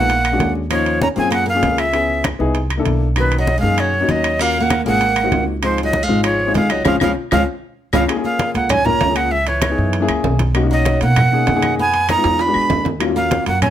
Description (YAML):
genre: Afro-Cuban jazz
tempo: 195 BPM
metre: 4/4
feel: straight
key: Db major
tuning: A4 = 442 Hz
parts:
  - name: breathy bright jazz flute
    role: melody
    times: 0.0-13.7 s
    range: Cb5 to B5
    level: -18 LUFS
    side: right 2 dB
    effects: none
  - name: flamenco guitar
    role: second line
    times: 0.0-13.7 s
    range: Db3 to Eb4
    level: -23 LUFS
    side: right 2 dB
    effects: none
  - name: dark grand piano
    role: accompaniment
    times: 0.0-13.5 s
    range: F#3 to A#4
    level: -21 LUFS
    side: left 5 dB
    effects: none
  - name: upright bass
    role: bass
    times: 0.0-13.7 s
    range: Ab1 to B2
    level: -21 LUFS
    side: equal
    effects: none
  - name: congas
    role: percussion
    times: 0.1-13.7 s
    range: none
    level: -23 LUFS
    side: left 1 dB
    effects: none
  - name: timbales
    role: percussion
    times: 0.1-13.7 s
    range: none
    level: -26 LUFS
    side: right 7 dB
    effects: none
  - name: claves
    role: percussion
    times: 0.3-13.7 s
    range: none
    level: -28 LUFS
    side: left 3 dB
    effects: none
room: light reverb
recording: none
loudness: -14 LUFS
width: side -10 dB against mid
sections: 0.0-8.1 A section; 8.1-13.7 B section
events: band accent 6.9-8.1; drum fill 7.2-8.1, 12.2-13.0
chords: 0.1 Bb7alt; 0.7 Ebm9; 1.9 Dbm7; 2.6 C13; 3.2 Cbmaj9; 4.4 Ebm9; 5.0 Ab9; 5.6 Dbmaj7; 8.1 C#6; 9.3 C#m7; 9.9 F#7; 10.5 Bmaj7; 11.8 Fm7b5; 12.4 E9; 13.0 D#m7